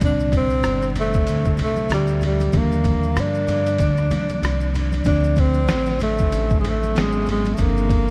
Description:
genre	hip hop, jazz-hop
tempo	95 BPM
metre	4/4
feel	swing 58% on 16ths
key	unclear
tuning	A4 = 439 Hz
part	breathy tenor saxophone	melody	0.0-8.1 s	G3 to D4	-25 LUFS	equal	diffuse ambient delay
part	mellow tine electric piano	accompaniment	0.0-8.1 s	Bb2 to A4	-28 LUFS	equal	none
part	upright bass	bass	0.0-8.1 s	G1 to G2	-25 LUFS	equal	none
part	trip hop sampler-style drum kit	drums	0.0-8.1 s	hi-hat, kick drum, ride cymbal, rim click, snare drum	-26 LUFS	equal	none
part	maracas and congas	percussion	0.0-8.1 s	none	-36 LUFS	equal	none
room	light reverb, small room ambience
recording	vinyl crackle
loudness	-20 LUFS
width	mono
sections	0.0-8.1 A section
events	none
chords	0.0 Csus2; 2.5 Ebmaj7; 5.1 Dm7; 7.0 Abm11; 7.6 Gm11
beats	| 0.01 0.65 1.28 1.91 | 2.54 3.17 3.80 4.43 | 5.07 5.70 6.33 6.96 | 7.59

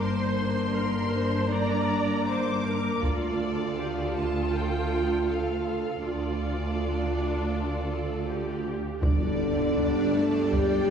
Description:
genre	cinematic, epic orchestral film score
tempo	80 BPM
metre	4/4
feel	straight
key	G minor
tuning	A4 = 440 Hz
part	rich symphonic violin section	melody	0.0-10.9 s	D5 to D6	-36 LUFS	left 4 dB	none
part	warm symphonic violin section	second line	0.0-10.9 s	D4 to D5	-36 LUFS	equal	none
part	rich studio viola section	accompaniment	0.0-10.9 s	G3 to D5	-33 LUFS	right 3 dB	none
part	dark French horn section	sustained chords	0.0-10.9 s	A3 to A4	-30 LUFS	left 1 dB	none
part	clear symphonic double bass section	bass	0.0-10.9 s	G1 to G2	-33 LUFS	right 1 dB	none
part	rich symphonic cello section	bass	0.0-10.9 s	D2 to A3	-32 LUFS	right 1 dB	none
part	taiko ensemble	drums	3.0-4.5, 9.0-10.9 s	none	-29 LUFS	right 1 dB	none
part	clear symphonic string section	sustained chords	9.0-10.9 s	G3 to D5	-34 LUFS	right 1 dB	none
part	clear trombone section	sustained chords	9.0-10.9 s	D3 to A3	-35 LUFS	right 1 dB	none
part	mellow tuba	bass	9.0-10.9 s	G1	-32 LUFS	right 1 dB	none
part	timpani	percussion	9.0-10.1 s	G2	-38 LUFS	left 1 dB	none
part	impact	sound effects	9.0-10.9 s	none	-41 LUFS	equal	none
part	large flute ensemble	second line	10.5-10.9 s	D5	-36 LUFS	right 5 dB	none
room	wet scoring stage reverb, RT60 1.9 s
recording	heard from further back in the room, small room reverb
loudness	-25 LUFS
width	side -7 dB against mid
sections	0.0-9.0 A section; 9.0-10.9 A section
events	impact 9.0-10.9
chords	0.0 Gm; 3.0 Dm; 9.0 G5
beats	| 0.01 0.77 1.52 2.27 | 3.02 3.77 4.53 5.28 | 6.03 6.78 7.53 8.28 | 9.03 9.78 10.53

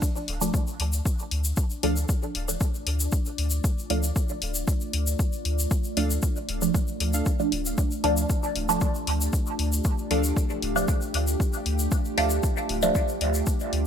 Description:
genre	dub techno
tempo	116 BPM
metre	4/4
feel	straight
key	D minor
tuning	A4 = 440 Hz
part	deep dark ambient pad	sustained chords	1.0-13.9 s	A3 to D5	-33 LUFS	equal	chorus, built-in reverb, sidechain pumping
part	electronic kick drum	drums	0.0-13.6 s	none	-25 LUFS	equal	overdrive
part	egg shaker	percussion	0.0-13.7 s	none	-33 LUFS	left 3 dB	none
part	soft dub sub bass	bass	0.3-13.9 s	D1 to D2	-27 LUFS	equal	sidechain pumping
part	electronic hi-hat	drums	0.3-13.8 s	none	-31 LUFS	left 6 dB	overdrive
part	filtered dub chord stab	stabs	0.4-13.0 s	F3 to D4	-28 LUFS	right 2 dB	phaser, sidechain pumping, dub echo
part	warbly lo-fi synth keys	riff	1.8-12.3 s	D4 to F5	-39 LUFS	right 4 dB	chorus, sidechain pumping, dub echo
room	light reverb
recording	bright 1980s-style digital production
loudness	-23 LUFS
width	side -8 dB against mid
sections	0.0-13.9 A section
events	none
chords	0.0 Dm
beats	0.02 0.54 1.05 | 1.57 2.09 2.61 3.12 | 3.64 4.16 4.68 5.19 | 5.71 6.23 6.75 7.26 | 7.78 8.30 8.81 9.33 | 9.85 10.37 10.88 11.40 | 11.92 12.43 12.95 13.47

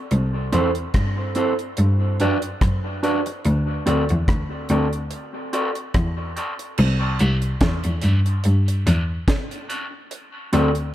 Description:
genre	dub reggae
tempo	72 BPM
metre	4/4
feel	swing 56% on 16ths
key	G major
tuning	A4 = 440 Hz
part	rich cello	bass	0.1-10.9 s	C2 to G2	-20 LUFS	equal	none
part	deep reggae drum kit	drums	0.1-10.9 s	crash cymbal, hi-hat, kick drum, rim click, snare drum	-24 LUFS	equal	none
part	mellow electric guitar	accompaniment	0.5-10.7 s	C4 to E5	-25 LUFS	right 1 dB	high-pass filter, dub echo
room	light reverb, small room reverb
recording	echo-heavy mix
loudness	-19 LUFS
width	side -13 dB against mid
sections	0.0-6.8 A section; 6.8-10.9 B section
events	filter sweep on clean electric guitar 3.4-10.1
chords	0.1 C6; 1.8 Gmaj7; 3.4 D7; 6.8 C6; 8.4 Gmaj7; 10.1 D7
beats	| 0.11 0.95 1.78 2.62 | 3.45 4.28 5.12 5.95 | 6.78 7.62 8.45 9.28 | 10.11

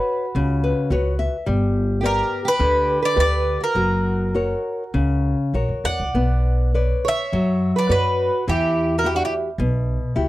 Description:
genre	fado-style ballad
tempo	103 BPM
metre	4/4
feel	uneven beats, rubato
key	B harmonic minor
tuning	A4 = 441 Hz
part	Greek bouzouki	melody	0.0-9.3 s	F#4 to F#5	-23 LUFS	equal	none
part	fingerpicked twelve-string acoustic guitar	second line	0.0-9.3 s	D4 to D5	-26 LUFS	right 4 dB	none
part	nylon-string guitar	accompaniment	0.0-10.3 s	B2 to E5	-23 LUFS	left 2 dB	none
part	upright bass	bass	0.3-10.3 s	F#1 to F#2	-22 LUFS	equal	none
room	little or no reverb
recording	dry, close 1970s-style studio recording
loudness	-18 LUFS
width	side -16 dB against mid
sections	0.0-10.3 A section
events	nylon-string guitar fill 0.4-1.5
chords	0.0 F#sus4; 1.5 G; 3.8 F#; 6.1 Bmadd9; 8.5 Emadd9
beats	0.35 0.91 | 1.47 2.03 2.60 3.17 | 3.76 4.35 4.95 5.55 | 6.15 6.75 7.33 7.90 | 8.48 9.04 9.60 10.16

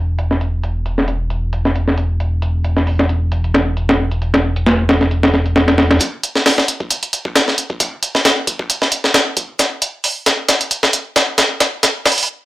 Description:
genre	breakbeat, breaks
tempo	134 BPM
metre	4/4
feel	swing 55% on 16ths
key	unclear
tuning	A4 = 441 Hz
part	fat analog bass	bass	0.0-6.0 s	E1	-17 LUFS	equal	none
part	breakbeat sampler-style drum kit	drums	0.2-12.3 s	hi-hat, kick drum, snare drum	-14 LUFS	equal	high-pass filter on hats, low-pass filter on hats, studio ambience, high-pass filter on snare, low-pass filter on snare, high-pass filter on kick, low-pass filter on kick
room	moderate studio reverb, RT60 0.6 s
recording	dry, gritty hardware recording, transformer saturation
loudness	-13 LUFS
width	side -17 dB against mid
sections	0.0-6.0 A section; 6.0-12.5 B section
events	build-up 6.0-12.5; drum fill 9.6-12.3; stop 12.3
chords	none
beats	0.19 | 0.64 1.09 1.53 1.98 | 2.43 2.88 3.33 3.77 | 4.22 4.67 5.12 5.56 | 6.01 6.46 6.91 7.36 | 7.80 8.25 8.70 9.15 | 9.59 10.04 10.49 10.94 | 11.38 11.83

